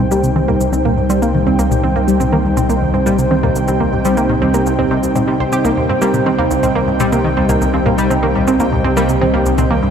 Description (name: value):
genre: ambient, sequencer-driven space music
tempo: 122 BPM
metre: 4/4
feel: straight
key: C minor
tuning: A4 = 440 Hz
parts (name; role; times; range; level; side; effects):
- sweeping resonant pad; sustained chords; 0.0-9.9 s; C3 to G5; -16 LUFS; equal; lush chorus
- wide unison pluck; arpeggios; 0.0-9.8 s; Bb3 to C5; -19 LUFS; right 3 dB; auto-pan, tape echo
- tight sequenced synth; riff; 0.0-9.9 s; C2 to G3; -18 LUFS; left 1 dB; chorus, tape echo
- warm sub bass; bass; 0.0-9.9 s; C2; -22 LUFS; equal; none
- bubbling stepped-filter texture; texture; 0.0-9.9 s; G5; -32 LUFS; right 2 dB; chorus, built-in reverb
- electronic cabasa and toms; percussion; 0.1-9.7 s; none; -25 LUFS; left 4 dB; overdrive, tape echo
room: wet cathedral reverb, RT60 6.7 s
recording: in a vast, echoing space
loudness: -12 LUFS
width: side -7 dB against mid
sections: 0.0-9.9 A section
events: fade-in on synth texture 0.0-9.9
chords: 0.0 Cm